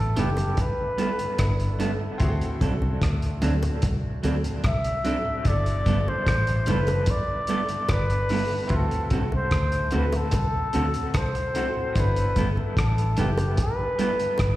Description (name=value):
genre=lovers rock reggae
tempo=74 BPM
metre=4/4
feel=straight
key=G major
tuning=A4 = 441 Hz
part: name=warm flugelhorn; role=melody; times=0.0-14.6 s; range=G4 to E5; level=-28 LUFS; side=equal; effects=dub echo, slapback echo
part: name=bright baby grand piano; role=accompaniment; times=0.0-14.6 s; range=B2 to A4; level=-38 LUFS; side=left 2 dB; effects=dub echo, slapback echo
part: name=mellow tonewheel organ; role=accompaniment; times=0.0-14.3 s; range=D2 to E4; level=-35 LUFS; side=left 1 dB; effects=none
part: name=vintage muted fingered electric bass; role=bass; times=0.0-14.6 s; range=F#1 to D2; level=-24 LUFS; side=equal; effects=none
part: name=electric guitar through a small old amp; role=stabs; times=0.2-14.1 s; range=F#3 to A4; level=-30 LUFS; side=right 3 dB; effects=dub echo, slapback echo
part: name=cloth-damped thuddy drum kit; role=drums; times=0.2-14.6 s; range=hi-hat, kick drum, rim click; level=-27 LUFS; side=equal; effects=none
part: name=bongos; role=percussion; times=0.2-14.6 s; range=none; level=-35 LUFS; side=equal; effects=slapback echo
room=light reverb, small room ambience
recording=live gig heard through the venue's PA, recital hall reverb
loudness=-22 LUFS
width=side -15 dB against mid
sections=0.0-14.6 A section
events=none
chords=0.0 G69; 2.2 D7; 5.5 G69; 8.7 D7; 12.0 G69